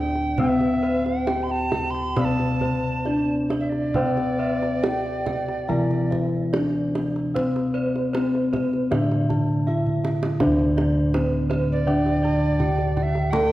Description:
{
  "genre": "Javanese gamelan",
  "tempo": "67-82 BPM",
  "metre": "4/4",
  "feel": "straight",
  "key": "D slendro",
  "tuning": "A4 = 440 Hz",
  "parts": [
    { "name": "gamelan-type bronze metallophone", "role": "melody", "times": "0.0-13.5 s", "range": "C4-45c to A4+25c", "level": "-25 LUFS", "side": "left 1 dB", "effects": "none" },
    { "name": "breathy alto recorder", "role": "second line", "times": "0.0-6.2, 11.7-13.5 s", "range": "D5 to C6-38c", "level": "-29 LUFS", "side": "right 3 dB", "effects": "none" },
    { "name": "gamelan-type bronze metallophone", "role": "accompaniment", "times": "0.0-13.5 s", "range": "D3 to C4-45c", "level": "-27 LUFS", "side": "equal", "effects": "none" },
    { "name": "gamelan-type bronze metallophone", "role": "arpeggios", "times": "0.0-13.5 s", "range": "C5-45c to A5+25c", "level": "-32 LUFS", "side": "right 4 dB", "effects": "none" },
    { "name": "gamelan-type bossed gongs", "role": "bass", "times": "0.0-13.5 s", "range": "D2 to C5-45c", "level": "-27 LUFS", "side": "left 1 dB", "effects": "tube saturation" },
    { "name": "kendang", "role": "percussion", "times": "0.2-13.5 s", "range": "none", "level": "-30 LUFS", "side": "right 2 dB", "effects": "none" },
    { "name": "gamelan-type bossed gongs", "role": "arpeggios", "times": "0.4-13.5 s", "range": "C5-45c to A5+25c", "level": "-32 LUFS", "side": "left 3 dB", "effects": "none" }
  ],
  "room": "moderate scoring stage reverb, RT60 1.4 s",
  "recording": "worn, warbling old tape, cassette tape, warbly pitch drift",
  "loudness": "-20 LUFS",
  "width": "side -15 dB against mid",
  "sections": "0.0-10.4 A section; 10.4-13.5 B section",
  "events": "drum fill 9.9-10.4",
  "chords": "none",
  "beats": "| 0.39 1.28 2.17 3.07 | 3.96 4.84 5.70 6.53 | 7.34 8.14 8.91 9.67 | 10.41 11.14 11.88 12.61 | 13.34"
}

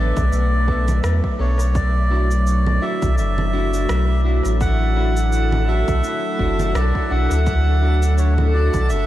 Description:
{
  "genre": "ambient dub",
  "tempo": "84 BPM",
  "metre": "4/4",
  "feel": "swing 56% on 16ths",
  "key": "unclear",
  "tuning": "A4 = 442 Hz",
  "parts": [
    { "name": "melodica", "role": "melody", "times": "0.0-9.1 s", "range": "C#5 to F#5", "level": "-25 LUFS", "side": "right 1 dB", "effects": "dub echo" },
    { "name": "warbly tape-like pad", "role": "sustained chords", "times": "0.0-9.1 s", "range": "C#3 to B4", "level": "-26 LUFS", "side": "equal", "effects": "chorus, built-in reverb" },
    { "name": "clean electric guitar", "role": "stabs", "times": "0.0-8.8 s", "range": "B3 to A4", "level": "-28 LUFS", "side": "equal", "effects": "vintage 12-bit sampler grit, dub echo" },
    { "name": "warm sub bass", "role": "bass", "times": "0.0-9.1 s", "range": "F#1 to E2", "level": "-18 LUFS", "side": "equal", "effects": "none" },
    { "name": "electronic congas, cabasa and rim click", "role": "drums", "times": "0.2-9.1 s", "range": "none", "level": "-31 LUFS", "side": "right 1 dB", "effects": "dub echo" },
    { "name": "electronic kick drum", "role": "drums", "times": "0.2-8.9 s", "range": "none", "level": "-23 LUFS", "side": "equal", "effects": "overdrive" },
    { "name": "backwards swelling texture", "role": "texture", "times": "2.8-9.1 s", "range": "A4", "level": "-32 LUFS", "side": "equal", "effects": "built-in reverb, lush chorus" }
  ],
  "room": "light reverb",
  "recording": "none",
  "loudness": "-16 LUFS",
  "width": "side -14 dB against mid",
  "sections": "0.0-9.1 A section",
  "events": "none",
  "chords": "0.0 Bm7; 1.8 Dadd9",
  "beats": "0.32 1.04 | 1.75 2.47 3.18 3.89 | 4.61 5.32 6.04 6.75 | 7.47 8.18 8.89"
}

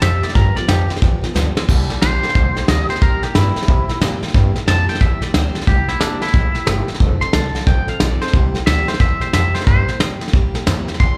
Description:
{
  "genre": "rockabilly",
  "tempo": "180 BPM",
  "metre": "4/4",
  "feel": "swing 64% on 8ths",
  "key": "C mixolydian",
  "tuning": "A4 = 440 Hz",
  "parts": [
    { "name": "twangy electric guitar", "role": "melody", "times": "0.0-11.2 s", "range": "D4 to C6", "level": "-24 LUFS", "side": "equal", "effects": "slapback echo, tape echo" },
    { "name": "picked steel-string acoustic guitar", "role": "accompaniment", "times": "0.0-11.2 s", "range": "G2 to A4", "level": "-28 LUFS", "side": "equal", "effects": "slapback echo" },
    { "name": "upright bass", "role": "bass", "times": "0.0-11.2 s", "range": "F1 to C3", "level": "-21 LUFS", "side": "equal", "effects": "none" },
    { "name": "soft brush drum kit", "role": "drums", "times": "0.0-11.1 s", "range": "crash cymbal, hi-hat, kick drum, snare drum", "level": "-19 LUFS", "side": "equal", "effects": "none" }
  ],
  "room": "small room ambience",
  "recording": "live gig heard through the venue's PA, club reverb",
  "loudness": "-16 LUFS",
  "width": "mono",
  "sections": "0.0-1.7 A section; 1.7-11.2 B section",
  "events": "drum fill 1.4-1.7; clean electric guitar solo 1.7-11.2",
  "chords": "0.4 G7; 1.7 C7; 7.0 F7; 8.3 C7",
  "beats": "0.02 | 0.35 0.69 1.02 1.35 | 1.69 2.02 2.35 2.68 | 3.02 3.35 3.68 4.01 | 4.35 4.68 5.01 5.34 | 5.68 6.01 6.34 6.67 | 7.01 7.34 7.67 8.01 | 8.34 8.67 9.00 9.34 | 9.67 10.00 10.33 10.67 | 11.00"
}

